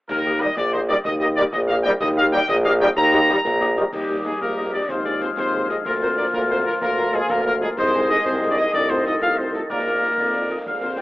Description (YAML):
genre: military-style march for wind band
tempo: 125 BPM (dotted quarters)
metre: 6/8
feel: straight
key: Eb major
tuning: A4 = 441 Hz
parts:
  - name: bright trumpet section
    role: melody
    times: 0.1-11.0 s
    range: G4 to Bb5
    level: -22 LUFS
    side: left 1 dB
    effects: none
  - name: warm tuba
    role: bass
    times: 0.1-11.0 s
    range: Bb1 to F2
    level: -23 LUFS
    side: equal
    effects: none
  - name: concert snare drum, clash cymbals and concert bass drum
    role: drums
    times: 0.1-11.0 s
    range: none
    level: -36 LUFS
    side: equal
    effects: none
  - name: mellow French horn section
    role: accompaniment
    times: 0.2-11.0 s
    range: F3 to Bb4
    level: -29 LUFS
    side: left 2 dB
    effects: none
  - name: warm woodwind section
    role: second line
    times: 0.3-11.0 s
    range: F4 to G5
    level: -26 LUFS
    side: left 2 dB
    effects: none
  - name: mellow trombone section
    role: sustained chords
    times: 0.4-11.0 s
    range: D3 to Bb3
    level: -27 LUFS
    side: equal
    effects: none
  - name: mellow euphonium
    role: second line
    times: 3.9-11.0 s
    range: G3 to F4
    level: -29 LUFS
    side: right 1 dB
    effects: none
room: moderate spring reverb, RT60 1.4 s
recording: telephone sound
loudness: -18 LUFS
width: side -18 dB against mid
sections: 0.1-3.9 A section; 3.9-11.0 B section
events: none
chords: 0.1 Eb; 4.9 Fm7/Eb; 5.8 Bb/D; 7.8 Ab/C; 8.7 F7/C; 9.7 Bb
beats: | 0.09 0.57 | 1.05 1.53 | 2.01 2.49 | 2.97 3.45 | 3.93 4.41 | 4.89 5.37 | 5.85 6.33 | 6.81 7.29 | 7.77 8.25 | 8.73 9.21 | 9.70 10.18 | 10.66